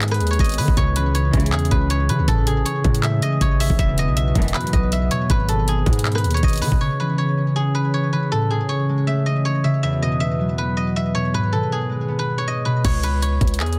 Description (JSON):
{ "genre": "hip hop, trap", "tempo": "159 BPM", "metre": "4/4", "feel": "half-time", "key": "C# minor", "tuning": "A4 = 440 Hz", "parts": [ { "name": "guzheng", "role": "melody", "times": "0.0-13.8 s", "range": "G#4 to E5", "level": "-27 LUFS", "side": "equal", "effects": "low-pass filter, delay" }, { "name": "hollow soft pad", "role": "sustained chords", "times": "0.0-12.8 s", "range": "D#3 to C#5", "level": "-32 LUFS", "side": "equal", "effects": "chorus" }, { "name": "hard-hitting 808-style bass", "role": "bass", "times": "0.0-6.8, 12.8-13.8 s", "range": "E1 to D#3", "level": "-23 LUFS", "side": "equal", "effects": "none" }, { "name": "trap drum kit", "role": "drums", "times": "0.0-6.8, 12.8-13.8 s", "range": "crash cymbal, handclaps, hi-hat, kick drum, rim click", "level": "-23 LUFS", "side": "equal", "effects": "none" }, { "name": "concert harp", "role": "accompaniment", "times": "0.8-13.8 s", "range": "E2 to C#5", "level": "-24 LUFS", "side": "equal", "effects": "low-pass filter" }, { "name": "muted chamber string section", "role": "stabs", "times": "1.3-1.7, 4.4-4.7 s", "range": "F#2 to E3", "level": "-32 LUFS", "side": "equal", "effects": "none" } ], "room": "small room ambience", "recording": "dense, heavily limited modern master", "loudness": "-20 LUFS", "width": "mono", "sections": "0.0-6.8 A section; 6.8-12.8 B section", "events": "none", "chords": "0.0 G#m; 0.8 C#m; 2.3 Amaj7; 3.8 Esus2; 5.3 G#m; 6.8 C#m; 8.3 Amaj7; 9.8 Esus2; 11.3 G#m; 12.8 C#m" }